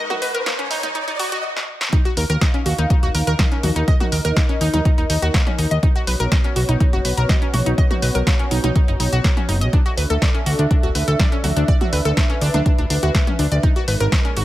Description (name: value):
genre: melodic techno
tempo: 123 BPM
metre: 4/4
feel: straight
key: Eb minor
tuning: A4 = 442 Hz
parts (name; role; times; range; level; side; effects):
- dark analog pad; sustained chords; 0.0-14.4 s; Ab3 to F5; -26 LUFS; right 1 dB; chorus, sidechain pumping
- analog pluck; arpeggios; 0.0-14.4 s; A3 to Eb5; -24 LUFS; equal; chorus, cassette tape, sidechain pumping, dub echo
- riser; sound effects; 0.0-1.4 s; none; -28 LUFS; equal; none
- punchy analog drum machine; drums; 0.1-14.4 s; hi-hat, snare drum, toms; -24 LUFS; left 1 dB; sidechain pumping on hats, sidechain pumping on toms
- electronic kick drum; drums; 1.9-14.2 s; none; -17 LUFS; equal; none
- fat analog bass; bass; 2.2-14.4 s; D1 to Eb2; -19 LUFS; equal; sidechain pumping
room: digital ambience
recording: high-pass filter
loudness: -16 LUFS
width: side -15 dB against mid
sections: 0.0-1.9 A section; 1.9-14.4 B section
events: build-up 0.0-1.9; riser 0.0-1.4; filter sweep 0.0-1.9; drum fill 1.6-1.9; drop 1.9-14.4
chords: 0.0 Absus2; 1.9 Ebmadd9; 5.8 Badd9; 9.7 D; 13.6 Abmadd9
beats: 0.46 0.95 1.44 | 1.93 2.41 2.90 3.39 | 3.88 4.37 4.85 5.34 | 5.83 6.32 6.80 7.29 | 7.78 8.27 8.76 9.24 | 9.73 10.22 10.71 11.20 | 11.68 12.17 12.66 13.15 | 13.63 14.12